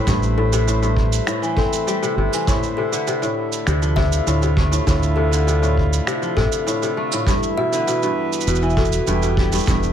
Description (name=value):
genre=folktronica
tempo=100 BPM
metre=4/4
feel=straight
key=unclear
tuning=A4 = 440 Hz
part: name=pedal harmonium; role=sustained chords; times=0.0-9.9 s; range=D3 to C5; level=-26 LUFS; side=right 2 dB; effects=plate reverb
part: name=kora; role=arpeggios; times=0.0-9.9 s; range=G2 to C4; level=-22 LUFS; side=left 1 dB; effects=digital delay
part: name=fingered electric bass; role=bass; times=0.1-9.9 s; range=E1 to D2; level=-19 LUFS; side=right 1 dB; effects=none
part: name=electronic cabasa and finger snaps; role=drums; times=0.1-9.9 s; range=none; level=-28 LUFS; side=right 6 dB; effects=none
part: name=kick drum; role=drums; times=0.1-9.8 s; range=none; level=-21 LUFS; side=right 1 dB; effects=none
part: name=kalimba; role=second line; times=0.4-9.1 s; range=A4 to E5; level=-27 LUFS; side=left 7 dB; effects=digital delay, plate reverb
room=light reverb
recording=none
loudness=-17 LUFS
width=side -9 dB against mid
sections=0.0-9.9 A section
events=none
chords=0.0 Am7; 2.5 Dm7; 7.3 Em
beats=| 0.07 0.67 1.27 1.87 | 2.47 3.07 3.67 4.27 | 4.87 5.47 6.07 6.67 | 7.27 7.87 8.47 9.07 | 9.67